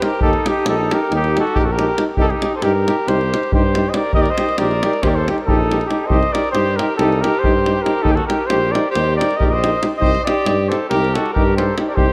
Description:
balkan folk, Balkan brass band; 276 BPM (eighths); 9/8; straight; C dorian sharp4; A4 = 440 Hz
mellow cornet; melody; 0.0-12.1 s; G4 to Eb5; -22 LUFS; equal; tape echo
clear trumpet; second line; 0.0-12.1 s; Eb4 to C5; -26 LUFS; equal; tape echo
brilliant trombone; accompaniment; 0.0-12.1 s; G4; -28 LUFS; equal
clear euphonium; accompaniment; 0.0-12.1 s; Eb4; -27 LUFS; equal
davul; percussion; 0.0-12.1 s; -24 LUFS; equal
mellow tuba; bass; 0.2-12.1 s; Bb1 to G2; -23 LUFS; equal
moderate plate reverb, RT60 2.6 s; dreamy mix soaked in reverb; -17 LUFS; mono
0.0-12.1 A section
0.2 Eb; 2.2 Cm; 4.1 Eb; 6.1 Cm; 8.1 Eb; 10.0 Cm
0.01 | 0.22 0.44 0.66 0.87 1.09 1.31 1.53 1.74 1.96 | 2.18 2.40 2.61 2.83 3.05 3.27 3.48 3.70 3.92 | 4.13 4.35 4.57 4.79 5.00 5.22 5.44 5.66 5.88 | 6.09 6.31 6.53 6.75 6.96 7.18 7.40 7.62 7.84 | 8.05 8.27 8.49 8.71 8.92 9.14 9.36 9.58 9.79 | 10.01 10.23 10.45 10.66 10.88 11.10 11.32 11.54 11.75 | 11.97

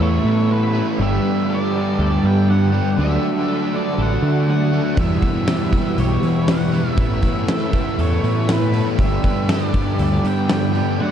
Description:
rock, shoegaze and dream pop; 120 BPM; 4/4; straight; A4 = 440 Hz
octave-fuzz lead guitar; melody; 0.0-11.1 s; B4 to G5; -29 LUFS; equal; distortion, tape echo
analog string pad; sustained chords; 0.0-11.1 s; F#4 to D6; -30 LUFS; equal; ensemble chorus, phaser
twelve-string electric guitar; arpeggios; 0.0-11.1 s; F#3 to A4; -27 LUFS; right 3 dB; analog chorus, tape echo
biting overdriven guitar; riff; 0.0-11.1 s; E2 to G4; -25 LUFS; right 7 dB; reverse reverb
raw garage guitar; riff; 0.0-11.1 s; E2 to D4; -27 LUFS; left 1 dB; overdrive, wide subtle chorus
thick fuzz guitar; riff; 0.0-11.1 s; E2 to D4; -24 LUFS; left 6 dB; distortion, ensemble chorus
growling fingered electric bass; bass; 0.0-10.8 s; G1 to E3; -19 LUFS; equal; overdrive
huge arena drum kit; drums; 5.0-10.9 s; hi-hat, kick drum, snare drum; -21 LUFS; equal
moderate huge ambient reverb, RT60 7.5 s; dreamy mix soaked in reverb, cassette tape; -16 LUFS; side -9 dB against mid
0.0-11.1 A section
0.0 Asus2; 1.0 Gadd9; 3.0 D; 5.0 Em; 7.0 Asus2; 9.0 Gadd9
0.00 0.50 | 0.99 1.49 1.99 2.48 | 2.98 3.48 3.98 4.48 | 4.98 5.47 5.97 6.48 | 6.98 7.48 7.98 8.48 | 8.98 9.48 9.99 10.49 | 10.99

